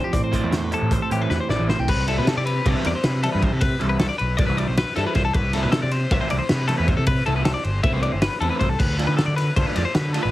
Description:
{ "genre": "math rock and midwest emo", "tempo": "312 BPM (eighths)", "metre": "9/8", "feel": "straight", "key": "unclear", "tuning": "A4 = 441 Hz", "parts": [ { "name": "clean electric guitar", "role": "accompaniment", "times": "0.0-3.6 s", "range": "A2 to C5", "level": "-29 LUFS", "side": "right 6 dB", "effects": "none" }, { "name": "twelve-string electric guitar", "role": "arpeggios", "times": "0.0-10.3 s", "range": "G4 to E5", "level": "-26 LUFS", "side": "left 4 dB", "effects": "none" }, { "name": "growling picked electric bass", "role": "bass", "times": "0.1-10.3 s", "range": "G1 to D3", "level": "-24 LUFS", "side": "equal", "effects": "overdrive" }, { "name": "loose indie drum kit", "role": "drums", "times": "0.1-10.2 s", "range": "crash cymbal, hi-hat, kick drum, ride cymbal, snare drum", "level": "-24 LUFS", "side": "equal", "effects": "none" }, { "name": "crunchy overdriven guitar", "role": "riff", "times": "0.3-10.3 s", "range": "D3 to F4", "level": "-27 LUFS", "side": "right 1 dB", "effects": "phaser" } ], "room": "little or no reverb", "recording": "heavily compressed radio sound, multiband compression", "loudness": "-19 LUFS", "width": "side -16 dB against mid", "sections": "0.0-1.9 A section; 1.9-10.3 B section", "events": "drum fill 1.3-1.9", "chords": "0.1 Am7; 1.9 Cmaj9; 5.3 Am/C; 8.8 Dm7", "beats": "| 0.13 0.33 0.52 0.71 0.91 1.10 1.30 1.49 1.68 | 1.88 2.07 2.27 2.46 2.65 2.84 3.04 3.23 3.42 | 3.62 3.81 4.00 4.19 4.39 4.58 4.77 4.96 5.16 | 5.35 5.54 5.73 5.92 6.12 6.31 6.50 6.69 6.88 | 7.08 7.27 7.46 7.65 7.84 8.03 8.22 8.41 8.61 | 8.80 8.99 9.18 9.37 9.56 9.75 9.95 10.14" }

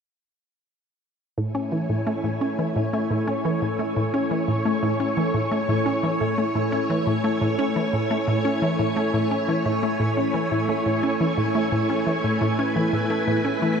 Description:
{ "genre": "ambient, sequencer-driven space music", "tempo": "87 BPM", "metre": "4/4", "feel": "straight", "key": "A major", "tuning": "A4 = 440 Hz", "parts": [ { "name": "string machine, full ensemble", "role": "sustained chords", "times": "1.4-13.8 s", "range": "A3 to G#5", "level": "-23 LUFS", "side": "equal", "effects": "ensemble chorus, shimmer reverb" }, { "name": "resonant blip pluck", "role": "riff", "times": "1.4-13.7 s", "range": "A2 to C#4", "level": "-24 LUFS", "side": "equal", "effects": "chorus, ping-pong delay, shimmer reverb" } ], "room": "wet plate reverb, RT60 2.7 s", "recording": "dreamy mix soaked in reverb", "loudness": "-21 LUFS", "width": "side -6 dB against mid", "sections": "1.4-13.8 A section", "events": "none", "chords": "1.4 Amaj7", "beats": "| 1.38 2.07 2.76 3.45 | 4.14 4.83 5.52 6.21 | 6.90 7.59 8.28 8.96 | 9.65 10.34 11.03 11.72 | 12.41 13.10 13.79" }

